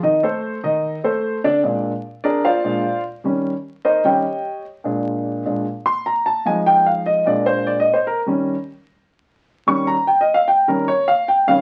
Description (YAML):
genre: jazz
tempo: 149 BPM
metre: 4/4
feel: straight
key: Bb mixolydian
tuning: A4 = 440 Hz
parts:
  - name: warm concert grand piano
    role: solo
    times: 0.0-11.6 s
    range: Bb2 to Db6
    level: -19 LUFS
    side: equal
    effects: none
room: wet small room reverb, RT60 0.6 s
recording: very old 78 rpm record, vinyl crackle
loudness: -19 LUFS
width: mono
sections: 0.0-1.6 A section; 1.6-11.6 B section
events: grand piano solo 1.6-11.6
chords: 0.0 Cm69; 1.6 Bb9; 3.2 Eb6; 4.9 Bb7; 6.5 Fm7; 7.3 Bb7; 8.1 Eb7